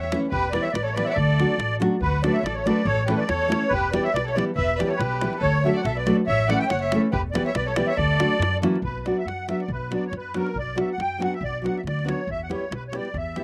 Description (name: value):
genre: balkan folk, Balkan wedding band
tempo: 141 BPM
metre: 2/4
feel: swing 54% on 16ths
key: D major, B harmonic minor from 8.8 s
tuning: A4 = 441 Hz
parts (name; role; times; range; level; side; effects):
- musette accordion; melody; 0.0-13.4 s; A#4 to G5; -28 LUFS; equal; slapback echo
- dark violin; second line; 0.0-8.6 s; F#4 to E5; -33 LUFS; equal; slapback echo
- upright bass; bass; 0.0-13.4 s; E1 to F#2; -30 LUFS; equal; none
- davul; percussion; 0.0-13.4 s; none; -35 LUFS; equal; none
- nylon-string guitar; accompaniment; 0.1-13.4 s; D3 to A4; -28 LUFS; equal; none
room: little or no reverb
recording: recorded outdoors, with no room sound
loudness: -24 LUFS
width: mono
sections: 0.0-2.0 A section; 2.0-8.8 A section; 8.8-13.4 B section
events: none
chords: 0.3 Em; 1.2 D; 2.9 A; 3.7 Em; 5.4 D; 6.3 A; 7.1 Em; 8.0 D; 8.4 F#7; 8.8 Bm; 12.3 Em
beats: | 0.32 0.75 | 1.17 1.60 | 2.02 2.45 | 2.87 3.30 | 3.72 4.15 | 4.57 5.00 | 5.42 5.85 | 6.28 6.70 | 7.13 7.55 | 7.98 8.41 | 8.84 9.27 | 9.70 10.12 | 10.56 10.99 | 11.42 11.85 | 12.28 12.71 | 13.14